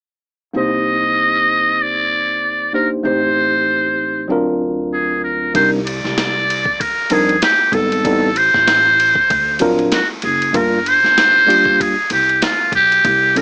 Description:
hip hop, jazz-hop; 96 BPM; 4/4; swing 58% on 16ths; C minor; A4 = 440 Hz
tine electric piano; accompaniment; 0.5-13.4 s; F#3 to C5; -20 LUFS; equal; overdrive
upright bass; bass; 0.5-13.4 s; F#1 to F2; -29 LUFS; equal
trumpet with metal mute; melody; 0.6-13.4 s; F4 to Eb5; -16 LUFS; equal
boom bap sampler-style drum kit; drums; 5.5-13.4 s; hi-hat, kick drum, ride cymbal, snare drum; -25 LUFS; equal
light reverb; small speaker sound; -15 LUFS; mono
0.5-5.5 A section; 5.5-13.4 B section
0.5 Cm9; 3.0 Am7b5; 4.3 D7alt; 5.5 Cm9; 8.0 Am7b5; 9.3 D7alt; 10.5 Gm7
| 0.55 1.17 1.80 2.42 | 3.05 3.67 4.30 4.92 | 5.55 6.17 6.80 7.42 | 8.05 8.67 9.30 9.92 | 10.55 11.17 11.80 12.42 | 13.05

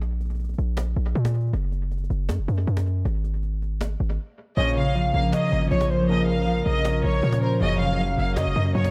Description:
hip hop, trap; 158 BPM; 4/4; half-time; Bb minor; A4 = 441 Hz
hard-hitting 808-style bass; bass; 0.0-8.9 s; Gb1 to Bb2; -26 LUFS; equal
cajon; drums; 0.0-8.9 s; -40 LUFS; equal; analog delay
warm studio violin section; melody; 4.6-8.9 s; Bb4 to F5; -30 LUFS; equal; analog delay
breathy flute-like synth lead; second line; 4.6-8.9 s; Bb4 to F5; -31 LUFS; equal; chorus, analog delay
concert harp; accompaniment; 4.6-8.9 s; Gb2 to Db4; -27 LUFS; equal; analog delay
dark analog pad; sustained chords; 4.6-8.9 s; F3 to Bb4; -36 LUFS; equal
analog synth brass; stabs; 4.6-7.9 s; Gb2 to F3; -35 LUFS; equal; chorus, analog delay
small room ambience; echo-heavy mix; -24 LUFS; mono
0.0-4.6 A section; 4.6-8.9 B section
break 0.0-4.6
0.0 N.C.; 4.6 Bbm; 7.6 Gb
| 0.01 0.39 0.77 1.15 | 1.53 1.91 2.29 2.67 | 3.05 3.43 3.81 4.19 | 4.57 4.95 5.33 5.71 | 6.09 6.47 6.85 7.23 | 7.61 7.99 8.37 8.75

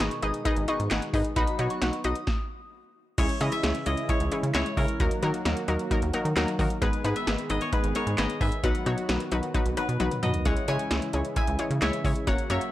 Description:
synth-pop; 132 BPM; 4/4; straight; C# dorian; A4 = 438 Hz
koto; melody; 0.0-12.7 s; G#4 to G#5; -34 LUFS; left 1 dB; tape echo
soft synth bell; second line; 0.0-2.1 s; B5 to D#6; -34 LUFS; equal; chorus, tape echo
analog pluck; accompaniment; 0.0-12.7 s; F#3 to F#5; -29 LUFS; left 2 dB; chorus
brassy analog pad; sustained chords; 0.0-12.7 s; B2 to G#4; -36 LUFS; right 1 dB; chorus, tremolo
rubbery square bass; bass; 0.0-12.6 s; F#1 to D#3; -29 LUFS; equal
electro analog drum machine; drums; 0.0-12.7 s; crash cymbal, handclaps, hi-hat, kick drum, snare drum, toms; -29 LUFS; equal
little or no reverb; dry, gritty hardware recording, transformer saturation; -24 LUFS; side -14 dB against mid
0.0-3.2 A section; 3.2-12.7 B section
stop 2.3-3.2; drum fill 10.0-10.5
0.0 G#m; 1.4 B; 3.2 C#m; 5.0 D#m; 6.8 G#m; 8.6 B; 10.5 C#m
0.00 0.45 0.91 | 1.36 1.82 2.27 2.73 | 3.18 3.64 4.09 4.54 | 5.00 5.45 5.91 6.36 | 6.82 7.27 7.73 8.18 | 8.64 9.09 9.54 10.00 | 10.45 10.91 11.36 11.82 | 12.27

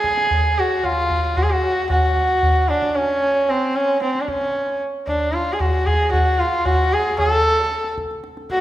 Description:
indian classical, Hindustani; 114 BPM; 4/4; straight; A4 = 440 Hz
warm sarangi; melody; 0.0-8.6 s; B#3 to A4; -18 LUFS; equal
tabla; percussion; 0.0-8.6 s; -23 LUFS; equal
wet recital hall reverb, RT60 1.6 s; recorded in a church or concert hall; -17 LUFS; side -14 dB against mid
0.0-8.6 A section
0.31 | 0.84 1.37 1.90 2.43 | 2.96 3.49 4.02 4.55 | 5.07 5.60 6.13 6.66 | 7.18 7.71 8.24

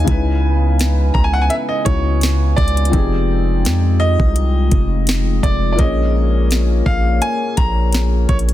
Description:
contemporary R&B; 84 BPM; 4/4; swing 54% on 16ths; Bb minor; A4 = 440 Hz
bright grand piano; melody; 0.0-8.4 s; Db5 to Bb5; -23 LUFS; right 1 dB; digital delay
felt-muted upright piano; accompaniment; 0.0-8.5 s; Bb2 to Db5; -23 LUFS; left 5 dB
glass harmonica; sustained chords; 0.0-8.5 s; Ab3 to Ab5; -25 LUFS; left 4 dB
long sustained 808-style bass; bass; 0.0-8.5 s; F1 to F2; -16 LUFS; equal
smooth R&B drum kit; drums; 0.1-8.5 s; hi-hat, kick drum, snare drum; -18 LUFS; equal
studio ambience; dense, heavily limited modern master; -13 LUFS; side -13 dB against mid
0.0-8.5 A section
0.1 Dbm9; 2.9 Fm9; 5.8 Bbm7
| 0.08 0.79 1.50 2.22 | 2.93 3.65 4.36 5.08 | 5.79 6.50 7.22 7.93

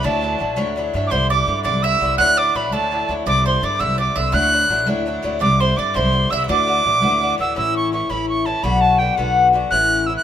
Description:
celtic folk, Celtic jig; 112 BPM (dotted quarters); 6/8; straight; D mixolydian; A4 = 439 Hz
bright reedy wooden whistle; melody; 0.0-10.2 s; F#5 to F#6; -19 LUFS; right 2 dB
bowl-back mandolin; second line; 0.0-7.4 s; A4 to F#5; -24 LUFS; right 5 dB
Irish bouzouki; accompaniment; 0.0-10.2 s; G2 to F#4; -21 LUFS; left 4 dB
upright bass; bass; 0.0-10.2 s; A1 to G2; -23 LUFS; equal
light reverb; minimal, uncompressed stereo recording; -16 LUFS; side -10 dB against mid
0.0-7.6 A section; 7.6-10.2 B section
0.0 Dadd9; 1.1 Cadd9; 2.2 Dadd9; 3.3 Cadd9; 4.3 Dadd9; 5.4 Cadd9; 6.5 Dadd9; 7.6 A; 8.6 Bm; 9.7 A
| 0.03 0.57 | 1.11 1.65 | 2.19 2.72 | 3.26 3.80 | 4.34 4.87 | 5.41 5.95 | 6.49 7.03 | 7.57 8.10 | 8.64 9.18 | 9.72

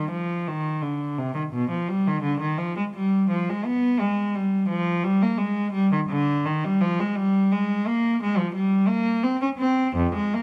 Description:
classical, baroque-style suite movement for unaccompanied cello; 86 BPM; 4/4; rubato; A4 = 436 Hz
rich cello; solo; 0.0-10.4 s; F2 to Db4; -24 LUFS; equal
moderate recital hall reverb, RT60 1.4 s; close, detailed microphones; -24 LUFS; mono
0.0-10.4 A section
0.14 0.84 | 1.55 2.25 2.95 3.65 | 4.34 5.04 5.75 6.45 | 7.14 7.84 8.53 9.22 | 9.95

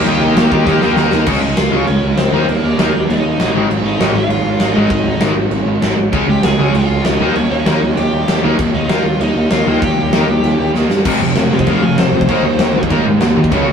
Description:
punk rock; 196 BPM; 4/4; straight; A4 = 442 Hz
smooth overdriven lead guitar; melody; 0.0-12.9 s; Bb3 to Ab5; -20 LUFS; left 1 dB
distorted electric guitar; riff; 0.0-13.7 s; F2 to Eb4; -18 LUFS; left 3 dB; distortion
distorted electric guitar; riff; 0.0-13.7 s; F2 to F4; -21 LUFS; right 2 dB; distortion
sludgy distorted guitar; riff; 0.0-13.7 s; F2 to Eb4; -24 LUFS; right 5 dB
fuzz picked electric bass; bass; 0.0-13.7 s; F1 to Ab2; -17 LUFS; equal; overdrive
big rock drum kit; drums; 0.1-13.6 s; crash cymbal, kick drum, snare drum; -16 LUFS; right 1 dB
moderate small room ambience, RT60 0.5 s; rough rehearsal-room recording; -12 LUFS; side -7 dB against mid
0.0-1.3 A section; 1.3-11.1 B section; 11.1-13.7 C section
drum fill 0.7-1.3, 10.7-11.1; lead electric guitar solo 11.1-13.7
0.0 Eb; 1.3 Db; 2.3 Eb; 3.5 Ab; 6.1 Db; 7.2 Eb; 11.1 Fm; 12.3 Eb
| 0.07 0.37 0.67 0.97 | 1.27 1.57 1.88 2.18 | 2.48 2.78 3.09 3.39 | 3.69 4.00 4.30 4.61 | 4.91 5.22 5.52 5.83 | 6.13 6.44 6.75 7.05 | 7.36 7.67 7.97 8.28 | 8.59 8.90 9.21 9.51 | 9.82 10.13 10.44 10.74 | 11.05 11.36 11.67 11.98 | 12.29 12.60 12.90 13.21 | 13.52

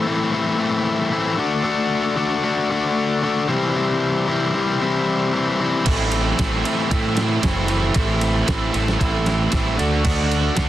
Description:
indie rock; 114 BPM; 4/4; straight; A dorian; A4 = 441 Hz
combo organ; sustained chords; 0.0-10.7 s; G4 to D6; -31 LUFS; right 3 dB
biting overdriven guitar; riff; 0.0-10.7 s; A2 to F#4; -20 LUFS; left 3 dB
biting overdriven guitar; riff; 5.8-10.7 s; A2 to F#4; -24 LUFS; right 10 dB; analog chorus, tape echo
growling fingered electric bass; bass; 5.9-10.7 s; F#1 to A2; -23 LUFS; right 1 dB; overdrive
clean 12-bit digital drum machine; drums; 5.9-10.7 s; crash cymbal, kick drum, ride cymbal, snare drum; -24 LUFS; right 1 dB
light reverb; dense, heavily limited modern master; -18 LUFS; side -13 dB against mid
0.0-10.7 A section
0.0 Am; 1.4 D; 3.5 C; 5.9 Am; 9.8 D
0.08 0.60 1.13 | 1.66 2.18 2.71 3.23 | 3.76 4.28 4.81 5.33 | 5.86 6.38 6.91 7.43 | 7.96 8.48 9.01 9.53 | 10.05 10.58

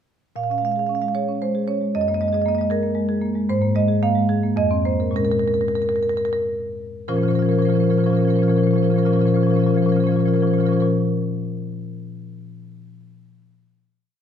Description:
classical, contemporary piece for solo marimba; 89-117 BPM; 3/4; rubato; Bb minor; A4 = 441 Hz
marimba with medium hard mallets; solo; 0.4-10.9 s; F2 to F5; -18 LUFS; left 1 dB
wet recital hall reverb, RT60 1.4 s; minimal, uncompressed stereo recording; -18 LUFS; side -8 dB against mid
0.3-7.1 A section; 7.1-10.9 final chord
slowing down 2.7-7.1
0.3 Bbm7; 1.9 Gb69; 3.5 Absus2; 4.6 F7sus4; 5.2 Bbm7; 7.1 Bbmadd9
| 0.35 0.88 1.41 | 1.93 2.45 2.96 | 3.48 4.01 4.57 | 5.16 5.79 6.43 | 7.09 7.72 8.36 | 8.99 9.63 10.28

